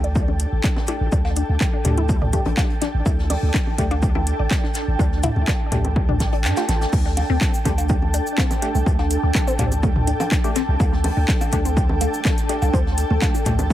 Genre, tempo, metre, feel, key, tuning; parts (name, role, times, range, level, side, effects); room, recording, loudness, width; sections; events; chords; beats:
minimal techno; 124 BPM; 4/4; straight; A4 = 440 Hz
resonant blip pluck; riff; 0.0-13.7 s; A3 to D5; -29 LUFS; left 2 dB; phaser, sidechain pumping, analog delay
punchy sub bass; bass; 0.0-13.7 s; A1 to G2; -21 LUFS; equal; sidechain pumping
house drum kit; drums; 0.0-13.7 s; crash cymbal, handclaps, hi-hat, shaker; -28 LUFS; equal; overdrive, dub echo
ethereal airy pad; texture; 0.0-13.7 s; D4 to A5; -27 LUFS; right 1 dB; ensemble chorus, built-in reverb, sidechain pumping
electronic kick drum; drums; 0.2-13.7 s; -20 LUFS; equal; overdrive
vintage brush drum kit; drums; 0.2-13.7 s; hi-hat, shaker, snare drum; -37 LUFS; left 1 dB; sidechain pumping on hats, high-pass filter on hats, high-pass filter on snare, sidechain pumping on perc, high-pass filter on perc, high-pass filter on room, dub echo
electronic bongos, cowbell and toms; percussion; 0.3-13.7 s; -28 LUFS; equal; dub echo
wavetable chord stab; stabs; 0.9-13.6 s; A3 to G4; -32 LUFS; left 3 dB; dub echo
light reverb; echo-heavy mix; -18 LUFS; side -13 dB against mid
0.0-6.9 A section; 6.9-13.7 B section
kick drops out 6.4-6.9; band accent 6.4; drop 6.9-13.7
0.0 Dsus4
0.15 0.64 | 1.12 1.61 2.09 2.57 | 3.06 3.54 4.03 4.51 | 4.99 5.48 5.96 6.45 | 6.93 7.41 7.90 8.38 | 8.86 9.35 9.83 10.32 | 10.80 11.28 11.77 12.25 | 12.73 13.22 13.70